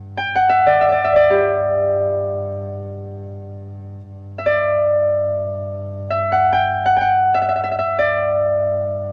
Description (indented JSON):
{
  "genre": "Persian modal ensemble",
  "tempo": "free time",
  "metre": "none",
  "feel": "none",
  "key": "unclear",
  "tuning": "A4 = 445 Hz",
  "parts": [
    { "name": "dark double bass", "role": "drone", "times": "0.0-9.1 s", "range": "G2", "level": "-33 LUFS", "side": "equal", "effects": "none" },
    { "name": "Celtic harp", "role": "melody", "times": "0.2-9.1 s", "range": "G4 to G5", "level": "-18 LUFS", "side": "equal", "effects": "none" }
  ],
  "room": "moderate small room reverb, RT60 0.5 s",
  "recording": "lossy compression artefacts",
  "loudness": "-17 LUFS",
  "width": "mono",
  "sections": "0.0-4.1 A section; 4.1-9.1 A section",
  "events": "none",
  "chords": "none"
}